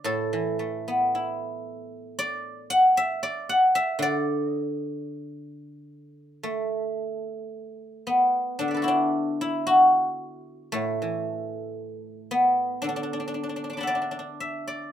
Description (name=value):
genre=chinese traditional, Chinese solo plucked strings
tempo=56 BPM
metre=2/4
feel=rubato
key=D gong mode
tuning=A4 = 439 Hz
part: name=guzheng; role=solo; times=0.0-14.9 s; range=A2 to D6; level=-23 LUFS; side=equal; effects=none
room=moderate studio reverb, RT60 0.6 s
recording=minimal, uncompressed stereo recording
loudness=-23 LUFS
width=side -10 dB against mid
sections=0.0-6.4 A section; 6.4-14.9 B section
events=none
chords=none